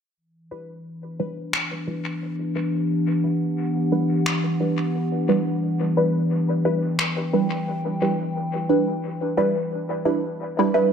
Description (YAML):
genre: ambient dub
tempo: 88 BPM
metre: 4/4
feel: swing 55% on 16ths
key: E minor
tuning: A4 = 440 Hz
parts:
  - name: warbly tape-like pad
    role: sustained chords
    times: 0.2-9.7 s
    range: E3 to G5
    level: -24 LUFS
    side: left 1 dB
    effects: chorus, built-in reverb
  - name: filtered dub chord stab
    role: stabs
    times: 0.5-10.9 s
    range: G3 to B4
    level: -23 LUFS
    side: right 2 dB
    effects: phaser, analog chorus, dub echo
  - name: electronic finger snaps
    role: drums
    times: 1.5-7.1 s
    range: none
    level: -28 LUFS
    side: left 1 dB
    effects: dub echo
room: moderate lush hall reverb, RT60 1.7 s, digital ambience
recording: none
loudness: -21 LUFS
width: side -7 dB against mid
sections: 0.2-10.9 A section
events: filter sweep on ambient pad 0.2-10.9; filter sweep on synth stab 0.2-10.9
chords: 0.2 Em7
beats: | 0.17 0.86 1.54 2.22 | 2.90 3.58 4.26 4.95 | 5.63 6.31 6.99 7.67 | 8.36 9.04 9.72 10.40